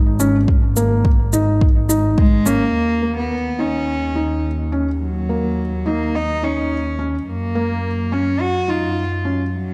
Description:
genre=piano and strings electronica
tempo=106 BPM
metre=4/4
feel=straight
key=Eb minor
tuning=A4 = 440 Hz
part: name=warm studio double bass section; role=bass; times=0.0-9.7 s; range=Ab1 to Gb2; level=-24 LUFS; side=equal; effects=sidechain pumping
part: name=felt-muted upright piano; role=riff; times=0.2-9.4 s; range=Bb3 to Eb4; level=-24 LUFS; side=equal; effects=digital delay
part: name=shaker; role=drums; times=0.2-2.6 s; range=none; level=-26 LUFS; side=equal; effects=low-pass filter on perc, low-pass filter on room
part: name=electronic kick drum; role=drums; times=0.5-2.3 s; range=none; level=-17 LUFS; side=equal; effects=overdrive
part: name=warm cello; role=melody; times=2.2-9.7 s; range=Gb3 to Gb4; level=-24 LUFS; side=equal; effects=none
room=moderate scoring stage reverb, RT60 1.7 s, studio reverb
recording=dark, warm production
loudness=-19 LUFS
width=mono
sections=0.0-2.7 A section; 2.7-9.7 B section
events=none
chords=0.0 Ab5; 2.7 Eb7(no3); 7.3 Gb

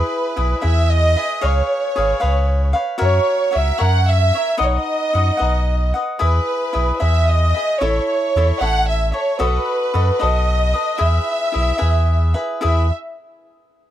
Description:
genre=mexican folk, mariachi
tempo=75 BPM (dotted quarters)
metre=6/8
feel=straight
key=E major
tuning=A4 = 441 Hz
part: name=clear studio violin section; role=melody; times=0.0-12.9 s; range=B4 to F#5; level=-20 LUFS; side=right 1 dB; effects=none
part: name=cavaquinho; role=accompaniment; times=0.0-12.9 s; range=D#4 to F#5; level=-22 LUFS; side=left 2 dB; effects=none
part: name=sub bass with octave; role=bass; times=0.0-12.9 s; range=G#1 to F#2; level=-16 LUFS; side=equal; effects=none
room=small room ambience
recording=dry, close 1970s-style studio recording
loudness=-15 LUFS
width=side -12 dB against mid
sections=0.0-12.6 A section; 12.6-13.9 B section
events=none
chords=0.0 E; 1.4 C#7; 3.0 F#7; 4.6 B; 6.2 E; 7.8 A; 9.4 B7; 11.0 E

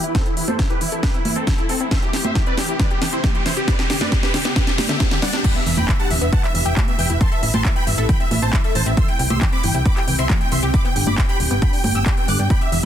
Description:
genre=uplifting trance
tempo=136 BPM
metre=4/4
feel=straight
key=unclear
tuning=A4 = 440 Hz
part: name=supersaw chords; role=melody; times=0.0-12.8 s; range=C4 to F#6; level=-24 LUFS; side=right 1 dB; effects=wide subtle chorus, sidechain pumping, low-pass filter, ping-pong delay
part: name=shimmering ambient pad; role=sustained chords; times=0.0-12.9 s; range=C3 to B4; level=-29 LUFS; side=equal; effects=chorus, built-in reverb, sidechain pumping
part: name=tight sequenced synth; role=arpeggios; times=0.0-12.8 s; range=D3 to A4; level=-27 LUFS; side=left 2 dB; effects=chorus, phaser, sidechain pumping, digital delay
part: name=solid FM bass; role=bass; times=0.0-12.9 s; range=D1 to G2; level=-22 LUFS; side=equal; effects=sidechain pumping, high-pass filter
part: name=techno drum kit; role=drums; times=0.0-12.8 s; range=congas, crash cymbal, handclaps, hi-hat, snare drum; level=-24 LUFS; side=right 1 dB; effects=overdrive
part: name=riser and impact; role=sound effects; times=0.4-7.2 s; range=none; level=-30 LUFS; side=equal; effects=none
part: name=electronic kick drum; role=drums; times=0.1-12.6 s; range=none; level=-19 LUFS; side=equal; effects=overdrive
room=little or no reverb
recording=dense, heavily limited modern master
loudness=-16 LUFS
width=side -10 dB against mid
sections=0.0-5.4 A section; 5.4-12.9 B section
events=build-up 0.0-5.4; drum fill 0.0-5.4; filter sweep on supersaw synth 0.0-5.4; filter sweep on synth arpeggio sound 0.0-5.4; riser 0.4-5.4; drop 5.4-12.9; impact 5.4-7.2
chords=0.1 Am; 1.9 C; 3.7 G; 5.4 Em; 7.2 Am; 9.0 C; 10.7 G

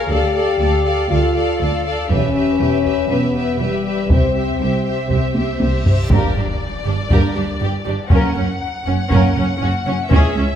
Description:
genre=cinematic, epic orchestral film score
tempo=120 BPM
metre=4/4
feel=straight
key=unclear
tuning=A4 = 440 Hz
part: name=warm symphonic violin section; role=melody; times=0.0-10.6 s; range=D5 to Gb5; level=-26 LUFS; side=left 5 dB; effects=none
part: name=warm symphonic violin section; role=second line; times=0.0-10.5 s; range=Db4 to D5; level=-26 LUFS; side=left 2 dB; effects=none
part: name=rich symphonic viola section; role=accompaniment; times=0.0-10.4 s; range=Db4 to A4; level=-25 LUFS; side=right 3 dB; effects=none
part: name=dark French horn section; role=sustained chords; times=0.0-10.3 s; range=G3 to G4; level=-21 LUFS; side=left 4 dB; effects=none
part: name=rich symphonic cello section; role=bass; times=0.0-10.4 s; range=C2 to G2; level=-23 LUFS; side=right 2 dB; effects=none
part: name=warm symphonic double bass section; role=bass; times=0.0-10.4 s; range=E1 to D2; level=-22 LUFS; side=right 2 dB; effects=none
part: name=taiko ensemble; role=drums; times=2.1-10.6 s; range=none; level=-18 LUFS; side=equal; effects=none
part: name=reverse cymbal and impact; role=sound effects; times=5.8-8.1 s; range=none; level=-31 LUFS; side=equal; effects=none
room=wet recital hall reverb, RT60 1.4 s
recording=recorded in a church or concert hall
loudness=-15 LUFS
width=side -9 dB against mid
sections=0.0-6.1 A section; 6.1-10.6 B section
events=drum fill 5.4-6.1; reverse cymbal 5.8-6.1; impact 6.1-8.1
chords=0.1 Dm; 2.1 Em; 4.1 C; 6.1 Gm; 8.1 Gb

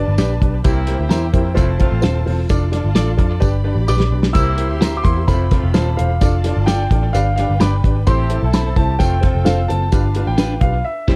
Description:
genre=uptempo 1960s-style soul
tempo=129 BPM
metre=4/4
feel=straight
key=unclear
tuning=A4 = 443 Hz
part: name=bright grand piano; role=melody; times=0.0-0.4, 3.9-11.2 s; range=D5 to E6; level=-26 LUFS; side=equal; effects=none
part: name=warm studio string section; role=second line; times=0.0-11.2 s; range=C4 to C6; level=-33 LUFS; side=equal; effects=none
part: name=clear upright piano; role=accompaniment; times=0.0-11.2 s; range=C4 to D5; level=-26 LUFS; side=equal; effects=none
part: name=vintage muted picked electric bass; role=bass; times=0.0-11.2 s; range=Eb1 to F2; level=-20 LUFS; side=equal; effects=none
part: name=clean electric guitar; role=stabs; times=0.2-11.2 s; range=D4 to D5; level=-28 LUFS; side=equal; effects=phaser, tape echo
part: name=cloth-damped thuddy drum kit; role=drums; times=0.2-11.2 s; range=crash cymbal, hi-hat, kick drum, snare drum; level=-20 LUFS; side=equal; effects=none
part: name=tambourine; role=percussion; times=0.2-10.5 s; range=none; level=-38 LUFS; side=equal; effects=none
part: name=clear horn section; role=second line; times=0.6-11.2 s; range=G3 to A4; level=-32 LUFS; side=equal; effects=tape echo
room=light reverb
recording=dark, warm production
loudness=-16 LUFS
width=mono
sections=0.0-11.2 A section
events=drum fill 3.4-4.4; band accent 10.9-11.2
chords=0.0 G; 0.7 C7; 1.6 F; 2.5 Dm/F; 3.4 G; 4.4 C7; 5.3 F; 6.2 Dm/F; 7.1 G; 8.1 Am; 9.0 F; 9.9 G7

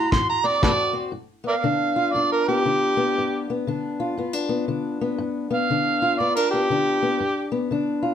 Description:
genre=acoustic country blues, solo or duo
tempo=118 BPM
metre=4/4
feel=swing 62% on 8ths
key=G mixolydian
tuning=A4 = 439 Hz
part: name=overdriven harmonica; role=melody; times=0.0-7.5 s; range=G4 to C6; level=-21 LUFS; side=right 2 dB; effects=slapback echo
part: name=fingerpicked old ladder-braced acoustic guitar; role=accompaniment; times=0.0-8.1 s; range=G2 to F#4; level=-24 LUFS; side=left 3 dB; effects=none
part: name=kick drum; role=drums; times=0.1-0.8 s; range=none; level=-23 LUFS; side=equal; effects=none
room=moderate studio ambience, RT60 0.5 s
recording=none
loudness=-20 LUFS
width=side -9 dB against mid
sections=0.0-1.1 A section; 1.1-8.1 B section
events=harmonica solo 0.0-1.1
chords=0.0 D7; 1.1 G7

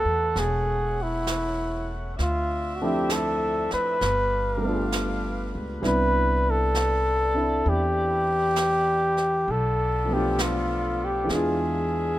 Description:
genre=jazz ballad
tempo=66 BPM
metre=4/4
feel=swing 69% on 8ths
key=unclear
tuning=A4 = 440 Hz
part: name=warm flugelhorn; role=melody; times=0.0-12.2 s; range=E4 to B4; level=-24 LUFS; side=equal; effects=none
part: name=warm grand piano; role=accompaniment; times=0.0-12.2 s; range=E3 to F4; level=-30 LUFS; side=right 1 dB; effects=none
part: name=mellow saxophone section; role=sustained chords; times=0.0-12.2 s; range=A3 to F#5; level=-36 LUFS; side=left 2 dB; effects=none
part: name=upright bass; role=bass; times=0.0-12.2 s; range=E1 to E2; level=-28 LUFS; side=equal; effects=none
part: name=jazz brush drum kit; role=drums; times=0.4-12.2 s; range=brushed snare drum, hi-hat, snare drum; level=-34 LUFS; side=right 2 dB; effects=none
room=light reverb, small room ambience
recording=rough home demo mix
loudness=-22 LUFS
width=side -15 dB against mid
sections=0.0-12.2 A section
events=none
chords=0.0 A69; 2.2 Dm9; 4.0 G7; 5.8 Cmaj9; 9.5 Bm7b5; 11.3 E7b9

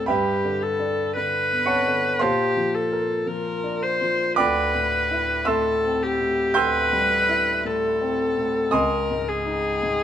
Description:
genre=classical, impressionist duo for viola and grand piano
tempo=56 BPM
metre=4/4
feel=rubato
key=unclear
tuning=A4 = 440 Hz
part: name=rich viola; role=melody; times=0.0-10.0 s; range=G4 to C5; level=-22 LUFS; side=left 1 dB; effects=none
part: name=warm grand piano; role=accompaniment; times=0.0-10.0 s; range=C#2 to G6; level=-24 LUFS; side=right 1 dB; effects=none
room=moderate large studio reverb, RT60 1.2 s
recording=minimal, uncompressed stereo recording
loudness=-20 LUFS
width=side -9 dB against mid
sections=0.0-10.0 A section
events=none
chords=0.1 Gmaj9; 2.2 Bbadd9; 4.4 D11; 8.7 C#sus2

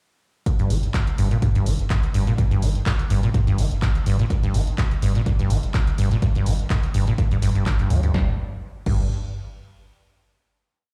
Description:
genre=acid house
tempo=125 BPM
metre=4/4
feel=swing 54% on 16ths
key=G minor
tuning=A4 = 440 Hz
part: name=acid bass, saw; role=riff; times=0.5-9.1 s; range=G2 to G3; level=-25 LUFS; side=equal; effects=tube saturation, subtle chorus, vintage 12-bit sampler grit, sidechain pumping, dub echo
part: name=electronic kick drum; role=drums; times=0.5-9.0 s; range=none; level=-24 LUFS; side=equal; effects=none
part: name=punchy analog drum machine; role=drums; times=0.5-9.0 s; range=crash cymbal, handclaps, hi-hat, snare drum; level=-36 LUFS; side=equal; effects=none
part: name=warm sub bass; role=bass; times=0.7-9.1 s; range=G1 to D2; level=-25 LUFS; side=equal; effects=sidechain pumping
room=little or no reverb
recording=played on a big sound system in a bare room, large studio reverb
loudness=-21 LUFS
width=mono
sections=0.5-8.1 groove; 8.1-10.1 final note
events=none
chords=none

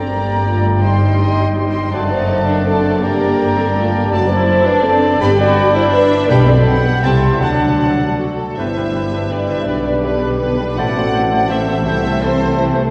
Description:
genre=classical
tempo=164 BPM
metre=3/4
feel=rubato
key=G minor, G major from 4.1 s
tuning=A4 = 444 Hz
part: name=clear oboe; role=second line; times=0.0-12.8 s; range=B4 to B5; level=-29 LUFS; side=equal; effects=none
part: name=mellow large flute ensemble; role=second line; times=0.0-12.6 s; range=A4 to C6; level=-26 LUFS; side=equal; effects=none
part: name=warm clarinet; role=second line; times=0.0-12.6 s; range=F#4 to G5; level=-29 LUFS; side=equal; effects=none
part: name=warm symphonic violin section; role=second line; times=0.0-12.9 s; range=A3 to C6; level=-30 LUFS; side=equal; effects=none
part: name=warm bassoon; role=accompaniment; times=0.0-12.8 s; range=G3 to D4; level=-28 LUFS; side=equal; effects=none
part: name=warm symphonic viola section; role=accompaniment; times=0.0-12.9 s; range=D3 to F#4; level=-24 LUFS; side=equal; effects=none
part: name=dark French horn section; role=sustained chords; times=0.0-12.6 s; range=A3 to D5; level=-22 LUFS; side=equal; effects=none
part: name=concert harp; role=arpeggios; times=0.0-12.9 s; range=F#2 to D5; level=-26 LUFS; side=equal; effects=none
part: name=rich symphonic cello section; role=bass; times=0.0-12.9 s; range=F#2 to D3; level=-25 LUFS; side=equal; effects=none
part: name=warm symphonic double bass section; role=bass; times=0.0-12.9 s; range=F#1 to D2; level=-23 LUFS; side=equal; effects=none
part: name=warm symphonic violin section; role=melody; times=0.1-12.6 s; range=A4 to F#5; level=-27 LUFS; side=equal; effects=none
part: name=bright trombone section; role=sustained chords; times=8.6-12.9 s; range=E3 to D4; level=-28 LUFS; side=equal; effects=none
part: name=mellow trumpet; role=stabs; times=8.6-12.9 s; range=A4 to B4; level=-30 LUFS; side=equal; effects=none
part: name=mellow tuba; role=bass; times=8.6-12.9 s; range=G1 to C2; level=-28 LUFS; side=equal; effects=none
room=wet church reverb, RT60 2.7 s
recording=worn, warbling old tape, cassette tape, warbly pitch drift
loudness=-15 LUFS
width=mono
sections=0.0-8.6 A section; 8.6-12.9 B section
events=none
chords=0.0 Gm; 0.8 Cm/G; 1.9 D7/F#; 3.0 Gm; 4.1 D7/F#; 5.2 G; 6.3 G/B; 7.0 Am7/C; 7.4 D; 8.6 G; 9.7 G/B; 10.8 Am; 11.9 Am/C

